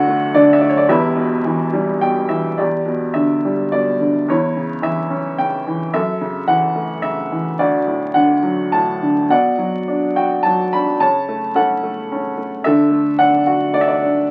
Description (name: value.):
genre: classical, lyrical solo piano.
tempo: 108 BPM.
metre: 3/4.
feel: rubato.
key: E dorian.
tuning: A4 = 439 Hz.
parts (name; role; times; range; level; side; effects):
bright upright piano; solo; 0.0-14.3 s; E1 to B5; -17 LUFS; equal; none.
room: wet studio reverb, RT60 0.7 s.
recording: very old 78 rpm record, vinyl crackle.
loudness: -17 LUFS.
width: mono.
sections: 0.0-2.6 A section; 2.6-14.3 A section.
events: upright piano fill 1.7-2.6.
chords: 0.0 Dadd9; 0.9 Em; 2.6 Em7; 4.3 Em6; 5.9 F#m7; 7.6 D; 9.3 Bm; 11.0 F#m/C#; 12.7 Dadd9.